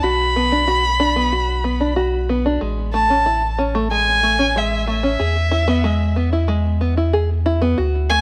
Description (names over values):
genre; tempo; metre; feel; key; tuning
folktronica; 93 BPM; 4/4; straight; unclear; A4 = 441 Hz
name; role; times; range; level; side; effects
dark violin; melody; 0.0-8.2 s; E5 to B5; -21 LUFS; equal; digital delay
open-back banjo; arpeggios; 0.0-8.2 s; G#3 to G#4; -23 LUFS; equal; low-pass filter, digital delay
warm sub bass; bass; 0.0-8.2 s; A1 to E2; -23 LUFS; equal; none
room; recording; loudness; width
light reverb, small room ambience; none; -18 LUFS; mono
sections
0.0-8.2 A section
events
none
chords
0.0 Bm; 2.6 Amaj7; 5.2 E